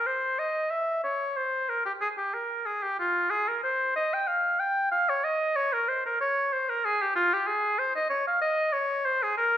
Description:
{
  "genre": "classical, baroque-style fantasia for unaccompanied oboe",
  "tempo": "93 BPM",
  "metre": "3/4",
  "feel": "rubato",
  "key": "F minor",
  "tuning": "A4 = 441 Hz",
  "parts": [
    { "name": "warm oboe", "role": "solo", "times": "0.0-9.6 s", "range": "F4 to G5", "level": "-25 LUFS", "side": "equal", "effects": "none" }
  ],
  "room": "moderate recital hall reverb, RT60 1.4 s",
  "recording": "minimal, uncompressed stereo recording",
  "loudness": "-25 LUFS",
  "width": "side -10 dB against mid",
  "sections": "0.0-9.6 A section",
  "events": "none",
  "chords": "none"
}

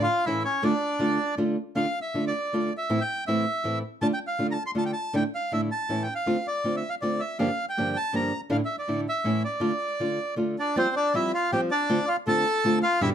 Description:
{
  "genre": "tango",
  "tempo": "160 BPM",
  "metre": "3/4",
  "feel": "rubato",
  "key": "D minor",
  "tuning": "A4 = 438 Hz",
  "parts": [
    { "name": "bandoneon", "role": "melody", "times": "0.0-13.1 s", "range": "C4 to C6", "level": "-26 LUFS", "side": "equal", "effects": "none" },
    { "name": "nylon-string guitar", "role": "accompaniment", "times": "0.0-13.1 s", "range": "G2 to G4", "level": "-27 LUFS", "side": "equal", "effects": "none" }
  ],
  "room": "light reverb",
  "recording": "close, detailed microphones",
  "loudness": "-24 LUFS",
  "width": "side -9 dB against mid",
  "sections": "0.0-1.8 A section; 1.8-10.8 A section; 10.8-13.1 B section",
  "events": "none",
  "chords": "0.3 A; 0.6 Dm; 2.9 Am; 4.0 Dm; 5.1 Asus4; 5.9 A; 6.3 Dm7; 7.4 Gm7; 8.5 Asus4; 9.3 A; 9.6 Dm; 10.8 Fsus2; 11.9 Dm7"
}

